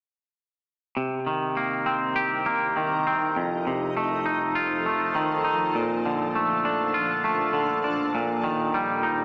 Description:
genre	rock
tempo	100 BPM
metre	4/4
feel	straight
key	C dorian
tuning	A4 = 439 Hz
part	shimmering ambient pad	sustained chords	1.9-9.2 s	C2 to Bb4	-34 LUFS	equal	chorus, built-in reverb
part	twangy electric guitar	arpeggios	1.0-9.2 s	F2 to G4	-26 LUFS	equal	tape echo
room	wet lush hall reverb, RT60 1.6 s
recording	big arena sound, small speaker sound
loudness	-25 LUFS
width	mono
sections	1.0-9.2 A section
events	none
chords	1.0 Cm7; 3.4 F7; 5.7 Bbmaj7; 8.1 Eb/Bb

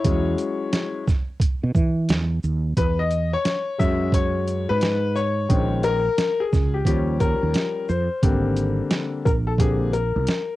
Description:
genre	hip hop, jazz-hop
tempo	88 BPM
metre	4/4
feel	swing 64% on 16ths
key	unclear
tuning	A4 = 439 Hz
part	warm concert grand piano	accompaniment	0.0-10.6 s	D3 to E5	-23 LUFS	left 4 dB	cassette tape
part	mellow fretless electric bass	bass	0.0-10.3 s	G#1 to E3	-23 LUFS	right 2 dB	none
part	boom bap sampler-style drum kit	drums	0.0-10.5 s	hi-hat, kick drum, shaker, snare drum	-22 LUFS	right 2 dB	cassette tape
room	light reverb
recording	home recording on cassette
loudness	-20 LUFS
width	side -16 dB against mid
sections	0.0-2.8 A section; 2.8-10.6 B section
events	grand piano solo 0.0-2.8, 2.8-10.6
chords	0.0 E69; 5.5 A#m11; 6.9 D#9; 8.2 G#maj9#11

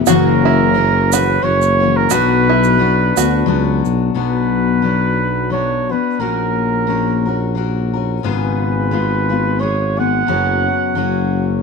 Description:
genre	acoustic folk duo or small band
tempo	88 BPM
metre	3/4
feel	swing 56% on 8ths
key	B minor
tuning	A4 = 440 Hz
part	picked steel-string acoustic guitar	accompaniment	0.0-11.6 s	F#2 to A#4	-18 LUFS	left 13 dB	none
part	mellow tuba	bass	0.0-11.6 s	F#1 to D2	-18 LUFS	right 2 dB	none
part	clear flugelhorn	melody	0.1-11.6 s	A#4 to F#5	-18 LUFS	right 4 dB	none
part	open-back banjo	arpeggios	0.1-3.8 s	E4 to F#4	-20 LUFS	right 14 dB	none
part	tube shaker	percussion	0.1-3.9 s	none	-22 LUFS	right 21 dB	none
room	light reverb, studio ambience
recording	1960s-style stereo with parts hard left and right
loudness	-13 LUFS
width	side -4 dB against mid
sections	0.0-4.2 A section; 4.2-11.6 B section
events	none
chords	0.1 F#7; 2.1 Bm; 6.2 F#/A#; 8.2 C#7/G#; 10.3 F#sus4; 11.0 F#

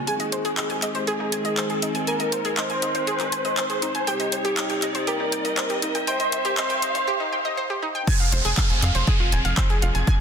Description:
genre	melodic techno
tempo	120 BPM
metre	4/4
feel	straight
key	F minor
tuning	A4 = 445 Hz
part	dark chamber string section	sustained chords	0.0-10.2 s	C3 to Ab4	-32 LUFS	equal	stereo widening, sidechain pumping
part	tight sequencer bass	bass	0.0-10.0 s	Eb1 to Ab2	-27 LUFS	equal	sidechain pumping, high-pass filter
part	riser and downlifter	sound effects	0.0-10.2 s	none	-30 LUFS	right 1 dB	none
part	fat analog lead	melody	0.1-7.1 s	G4 to C5	-26 LUFS	equal	chorus, sidechain pumping, ping-pong delay
part	analog pluck	arpeggios	0.1-10.1 s	Eb4 to Ab6	-28 LUFS	right 1 dB	chorus, sidechain pumping, digital delay
part	house drum kit	drums	0.1-10.2 s	handclaps, hi-hat	-28 LUFS	left 1 dB	none
part	electronic kick drum	drums	8.1-10.2 s	none	-22 LUFS	equal	none
room	moderate lush hall reverb, RT60 1.9 s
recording	dense, heavily limited modern master, high-pass filter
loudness	-21 LUFS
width	side -7 dB against mid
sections	0.0-8.1 A section; 8.1-10.2 B section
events	build-up 0.0-8.1; riser 0.0-7.1; filter sweep on analog synth lead 0.0-8.1; break 7.1-8.1; drop 8.1-10.2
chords	0.1 Ab; 4.1 Cm; 8.1 Fm

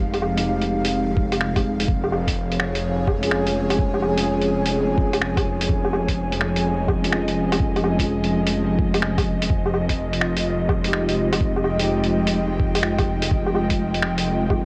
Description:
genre	future garage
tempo	126 BPM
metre	4/4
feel	swing 65% on 16ths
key	F minor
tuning	A4 = 440 Hz
part	mellow tine electric piano	accompaniment	0.0-14.7 s	Ab3 to Ab4	-29 LUFS	equal	vintage 12-bit sampler grit, sidechain pumping, tape echo
part	airy breathy pad	sustained chords	0.0-14.7 s	F3 to Ab5	-27 LUFS	equal	chorus, sidechain pumping
part	swelling detuned saw bass	bass	0.0-14.7 s	F1	-29 LUFS	equal	sidechain pumping
part	lo-fi sampler-style drum kit	drums	0.1-14.6 s	finger snaps, hi-hat, woodblock	-27 LUFS	equal	none
part	electronic kick drum	drums	1.2-14.6 s	none	-26 LUFS	equal	none
room	light reverb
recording	cassette tape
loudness	-21 LUFS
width	mono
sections	0.0-14.7 A section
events	none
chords	0.0 Fm9; 1.9 Db/F; 9.5 Fm9

